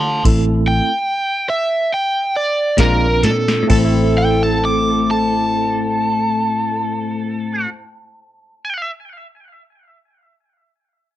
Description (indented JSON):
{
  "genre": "straight-eighth soul blues",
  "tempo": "64-75 BPM",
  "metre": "4/4",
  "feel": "straight",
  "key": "A minor",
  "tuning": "A4 = 440 Hz",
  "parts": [
    { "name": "overdriven electric guitar", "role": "melody", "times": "0.0-8.9 s", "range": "Bb4 to D6", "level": "-19 LUFS", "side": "right 1 dB", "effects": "none" },
    { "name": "tine electric piano", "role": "accompaniment", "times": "0.0-7.7 s", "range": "A3 to A4", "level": "-22 LUFS", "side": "right 3 dB", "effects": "medium stereo tremolo" },
    { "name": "vintage muted fingered electric bass", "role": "bass", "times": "0.0-7.7 s", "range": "A1 to D3", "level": "-19 LUFS", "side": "equal", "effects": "none" },
    { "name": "soft vintage rhythm box", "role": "drums", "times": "0.2-3.9 s", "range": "crash cymbal, hi-hat, kick drum, snare drum", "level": "-18 LUFS", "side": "equal", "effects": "none" },
    { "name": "overdriven slide guitar", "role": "second line", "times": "2.8-7.7 s", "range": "A4 to Bb4", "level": "-23 LUFS", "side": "right 2 dB", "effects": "none" },
    { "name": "direct-recorded clean electric guitar", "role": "stabs", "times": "2.8-7.9 s", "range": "A2 to F4", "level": "-21 LUFS", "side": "left 7 dB", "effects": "spring reverb" }
  ],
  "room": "light reverb",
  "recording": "none",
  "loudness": "-15 LUFS",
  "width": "side -13 dB against mid",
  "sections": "0.0-3.7 A section; 3.7-7.4 B section",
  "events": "slowing down 0.0-3.7; drum fill 2.8-3.7",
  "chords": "0.2 Am; 2.8 Bb7; 3.7 Am",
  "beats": "| 0.25 1.06 1.91 2.78 | 3.70 4.63 5.57 6.50"
}